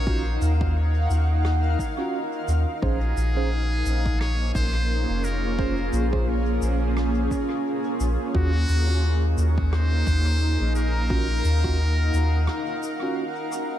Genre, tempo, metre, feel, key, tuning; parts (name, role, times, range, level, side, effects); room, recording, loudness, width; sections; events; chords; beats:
ambient dub; 87 BPM; 4/4; swing 57% on 16ths; A4 = 442 Hz
trumpet with metal mute; melody; 0.0-13.1 s; Gb4 to Db5; -33 LUFS; equal; dub echo
granular cloud pad; sustained chords; 0.0-13.8 s; Bb3 to Gb5; -28 LUFS; equal; built-in reverb, lush chorus
soft dub sub bass; bass; 0.0-12.5 s; F1 to Eb2; -22 LUFS; equal; tube saturation
mellow tine electric piano; stabs; 0.1-13.2 s; Db4 to C5; -34 LUFS; right 4 dB; medium stereo tremolo, dub echo
electronic kick drum; drums; 0.1-11.8 s; -28 LUFS; equal; overdrive
shaker and rim click; drums; 0.4-13.7 s; -41 LUFS; equal; dub echo
light reverb; -21 LUFS; side -12 dB against mid
0.0-13.8 A section
break 12.5-13.8
0.0 Ebm9; 2.8 Bbm7; 8.3 Ebm9
| 0.07 0.76 1.45 2.14 | 2.83 3.52 4.21 4.90 | 5.59 6.28 6.96 7.66 | 8.35 9.03 9.72 10.41 | 11.10 11.79 12.48 13.17